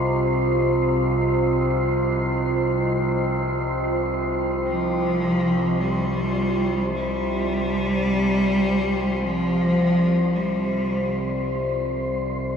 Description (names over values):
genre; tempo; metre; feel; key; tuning
dark ambient drone; free time; none; none; C minor; A4 = 439 Hz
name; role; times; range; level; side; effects
deep dark ambient pad; sustained chords; 0.0-12.6 s; F4 to Eb5; -26 LUFS; right 2 dB; chorus, built-in reverb, shimmer reverb
overtone-sweeping drone; drone; 0.0-12.6 s; C2 to C3; -25 LUFS; left 1 dB; chorus, built-in reverb
wind-like tuned noise texture; texture; 0.0-12.6 s; C5; -31 LUFS; left 2 dB; built-in reverb, shimmer reverb
rich cello; melody; 4.7-11.5 s; F3 to G3; -22 LUFS; equal; shimmer reverb, ping-pong delay
room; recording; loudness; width
wet cathedral reverb, RT60 6.1 s; dark, warm production; -20 LUFS; side -7 dB against mid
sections
0.0-12.6 A section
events
none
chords
0.0 Cm